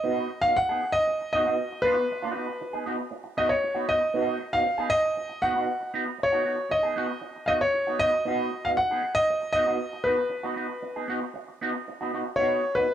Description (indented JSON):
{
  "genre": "disco",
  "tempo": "117 BPM",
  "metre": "4/4",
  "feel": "straight",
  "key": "unclear",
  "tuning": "A4 = 440 Hz",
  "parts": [
    { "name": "warm grand piano", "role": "melody", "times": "0.0-12.9 s", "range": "B4 to F#5", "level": "-24 LUFS", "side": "equal", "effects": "none" },
    { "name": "mellow electric guitar", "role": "accompaniment", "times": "0.0-12.9 s", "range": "B3 to G#4", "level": "-30 LUFS", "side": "right 3 dB", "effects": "wah, spring reverb" }
  ],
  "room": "moderate large studio reverb, RT60 0.9 s, studio reverb",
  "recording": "dark, warm production",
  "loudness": "-24 LUFS",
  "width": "side -10 dB against mid",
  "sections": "0.0-12.9 A section",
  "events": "none",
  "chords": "0.0 G#m7 (rootless)"
}